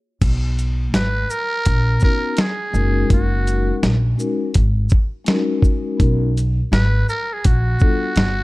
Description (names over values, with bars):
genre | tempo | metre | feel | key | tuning
hip hop, jazz-hop | 83 BPM | 4/4 | swing 65% on 16ths | unclear | A4 = 440 Hz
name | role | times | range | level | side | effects
upright bass | bass | 0.2-8.4 s | F#1 to B1 | -18 LUFS | equal | none
dusty soul sampler-style drum kit | drums | 0.2-8.4 s | crash cymbal, hi-hat, kick drum, shaker, snare drum | -17 LUFS | equal | none
trumpet with metal mute | melody | 0.9-8.4 s | F#4 to B4 | -23 LUFS | right 1 dB | slapback echo
vibraphone with soft mallets | accompaniment | 2.0-8.1 s | G3 to A#4 | -23 LUFS | left 4 dB | none
room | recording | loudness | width
small room ambience | dark, warm production | -16 LUFS | side -20 dB against mid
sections
0.2-8.4 A section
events
break 0.0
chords
0.2 Bmaj7(no3); 2.7 F#69; 6.0 Bmaj9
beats
| 0.21 0.94 1.66 2.38 | 3.11 3.83 4.55 5.28 | 6.00 6.72 7.44 8.17